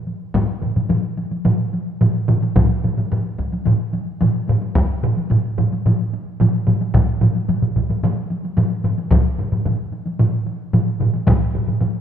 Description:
japanese traditional, taiko drum ensemble; 110 BPM; 4/4; straight
taiko ensemble; percussion; 0.1-11.9 s; -23 LUFS; left 2 dB
taiko ensemble; percussion; 0.3-11.4 s; -20 LUFS; equal
solo taiko drums; percussion; 0.4-11.9 s; -22 LUFS; left 3 dB
taiko ensemble; percussion; 0.4-11.9 s; -21 LUFS; right 4 dB
moderate scoring stage reverb, RT60 1.9 s; minimal, uncompressed stereo recording; -17 LUFS; side -9 dB against mid
0.4-12.0 A section
speeding up 0.0-12.0

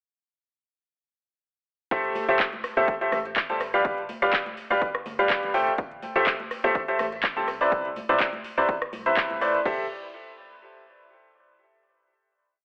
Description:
piano house; 124 BPM; 4/4; swing 54% on 16ths; A minor; A4 = 442 Hz
bright grand piano; riff; 1.9-9.8 s; C3 to A5; -26 LUFS; equal; sidechain pumping, tape echo
organ-like FM bass; bass; 1.9-9.9 s; G1 to E2; -47 LUFS; equal; sidechain pumping
electronic kick drum; drums; 1.9-9.8 s; -34 LUFS; equal; overdrive
house drum kit; drums; 1.9-9.8 s; crash cymbal, handclaps, hi-hat, rim click; -31 LUFS; equal; overdrive
tambourine and congas; percussion; 1.9-9.6 s; -48 LUFS; equal
light reverb; telephone sound; -25 LUFS; mono
1.9-9.7 drop; 9.7-11.6 final chord
drop 1.9-9.7
1.9 Am7; 3.6 G7; 5.5 Am7; 7.5 Cmaj9; 9.7 Am7

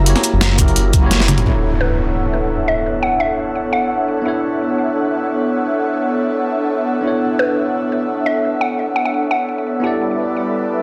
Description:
liquid drum and bass; 172 BPM; 4/4; swing 53% on 16ths; B minor; A4 = 440 Hz
tine electric piano; accompaniment; 0.0-10.8 s; A#3 to D5; -24 LUFS; equal; delay
airy breathy pad; sustained chords; 0.0-10.8 s; G3 to A#5; -22 LUFS; equal; chorus, sidechain pumping
dark detuned saw bass; bass; 0.0-1.4 s; F#1; -18 LUFS; equal
breakbeat sampler-style drum kit; drums; 0.1-1.4 s; hi-hat, shaker, snare drum, toms; -19 LUFS; equal
electronic kick drum; drums; 0.6-1.0 s; -17 LUFS; equal
impact; sound effects; 1.5-2.9 s; -23 LUFS; equal
mallet-like synth pluck; melody; 1.8-4.0, 7.4-9.7 s; B4 to F#5; -23 LUFS; equal; chorus, delay
moderate plate reverb, RT60 1.1 s, digital ambience; dense, heavily limited modern master; -17 LUFS; mono
0.0-1.5 A section; 1.5-10.8 B section
drop 0.0-1.5; drum fill 1.1-1.5; impact 1.5-2.9
0.0 F#7b9; 1.5 Bm11; 9.8 G69

